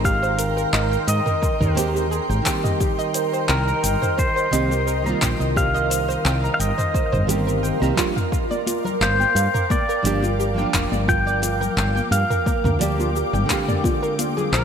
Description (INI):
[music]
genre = sunset chillout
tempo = 87 BPM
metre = 4/4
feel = swing 54% on 16ths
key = unclear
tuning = A4 = 441 Hz
[part]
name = pedal steel guitar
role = melody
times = 0.0-14.6 s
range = Bb4 to G5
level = -24 LUFS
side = left 1 dB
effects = digital delay
[part]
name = nylon-string guitar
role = accompaniment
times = 0.0-14.6 s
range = D3 to G4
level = -27 LUFS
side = right 2 dB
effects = auto-pan, digital delay
[part]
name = ethereal airy pad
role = sustained chords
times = 0.0-14.6 s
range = Bb4 to D6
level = -27 LUFS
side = right 2 dB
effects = ensemble chorus, built-in reverb
[part]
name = soft round pluck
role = arpeggios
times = 0.0-14.6 s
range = F4 to Bb5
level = -27 LUFS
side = right 2 dB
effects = analog chorus, digital delay
[part]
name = woody fretless electric bass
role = bass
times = 0.0-14.6 s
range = F1 to Ab2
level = -23 LUFS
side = equal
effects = none
[part]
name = electronic kick drum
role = drums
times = 0.0-14.0 s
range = none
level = -24 LUFS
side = equal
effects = none
[part]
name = deep house drum kit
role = drums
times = 0.1-14.6 s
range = cabasa, handclaps, hi-hat, toms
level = -26 LUFS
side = equal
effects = none
[part]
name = congas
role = percussion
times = 8.5-14.6 s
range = none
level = -31 LUFS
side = left 5 dB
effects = none
[sound]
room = moderate lush hall reverb, RT60 2.6 s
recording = bright 1980s-style digital production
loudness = -18 LUFS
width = side -7 dB against mid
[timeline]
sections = 0.0-14.6 A section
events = none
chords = 0.0 Abmaj9; 2.5 Cm7; 8.0 Gm7; 13.8 Bb13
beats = | 0.05 0.74 1.43 2.12 | 2.81 3.49 4.18 4.87 | 5.56 6.25 6.94 7.63 | 8.32 9.01 9.70 10.39 | 11.08 11.77 12.46 13.15 | 13.84 14.53